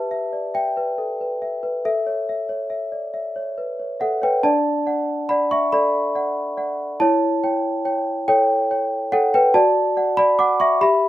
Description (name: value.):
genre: classical, lullaby for celesta.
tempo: 47 BPM (dotted quarters).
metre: 6/8.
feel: straight.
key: D major.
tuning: A4 = 441 Hz.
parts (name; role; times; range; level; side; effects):
celesta; solo; 0.0-11.1 s; D4 to D6; -18 LUFS; equal; none.
room: studio reverb.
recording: rough home demo mix.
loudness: -18 LUFS.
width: side -14 dB against mid.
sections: 0.0-4.4 A section; 4.4-11.1 B section.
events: none.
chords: 0.0 Em/G; 1.8 A; 4.4 D; 7.0 A7/E; 9.5 D/F#.